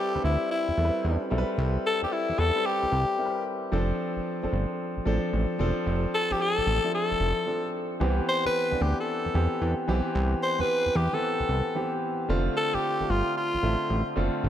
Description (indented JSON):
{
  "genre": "R&B, new jack swing",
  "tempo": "112 BPM",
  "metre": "4/4",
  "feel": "swing 66% on 16ths",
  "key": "C major",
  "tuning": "A4 = 440 Hz",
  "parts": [
    { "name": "raspy tenor saxophone", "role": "melody", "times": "0.0-14.1 s", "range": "E4 to C5", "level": "-27 LUFS", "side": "left 2 dB", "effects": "none" },
    { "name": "clear concert grand piano", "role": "accompaniment", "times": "0.0-14.5 s", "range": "D3 to E5", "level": "-30 LUFS", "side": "equal", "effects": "none" },
    { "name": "fat analog bass", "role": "bass", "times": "0.2-14.5 s", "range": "E1 to E2", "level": "-26 LUFS", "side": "equal", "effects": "none" }
  ],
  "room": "moderate plate reverb, RT60 2.6 s",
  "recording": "dark, warm production",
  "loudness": "-24 LUFS",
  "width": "side -10 dB against mid",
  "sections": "0.0-14.5 A section",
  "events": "none",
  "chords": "0.0 Cmaj7; 3.7 F6; 8.0 Cmaj7; 12.3 F6"
}